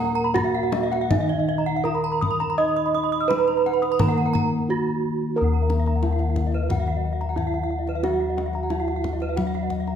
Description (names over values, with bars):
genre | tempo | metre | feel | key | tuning
Balinese gamelan | 77-90 BPM | 4/4 | straight | Eb pelog | A4 = 441 Hz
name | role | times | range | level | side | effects
gamelan-type bronze metallophone | melody | 0.0-10.0 s | Eb4 to Eb5 | -26 LUFS | right 5 dB | none
gamelan-type bronze metallophone | accompaniment | 0.0-10.0 s | Eb3 to Eb4 | -31 LUFS | left 2 dB | none
gamelan-type bronze metallophone | arpeggios | 0.0-10.0 s | Eb5 to Fb6+35c | -29 LUFS | left 4 dB | none
gamelan-type bronze metallophone | arpeggios | 0.0-9.9 s | Cb5 to Eb6 | -30 LUFS | right 5 dB | none
gamelan-type bossed gongs | bass | 0.0-10.0 s | Eb2 to Eb5 | -25 LUFS | left 2 dB | none
kendang | percussion | 0.4-10.0 s | none | -30 LUFS | left 2 dB | none
room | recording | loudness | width
moderate scoring stage reverb, RT60 1.6 s | none | -20 LUFS | side -8 dB against mid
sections
0.0-5.4 A section; 5.4-10.0 B section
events
break 4.3-5.4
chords
none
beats
0.34 1.10 1.85 | 2.58 3.30 4.00 4.69 | 5.36 6.03 6.70 7.37 | 8.04 8.71 9.38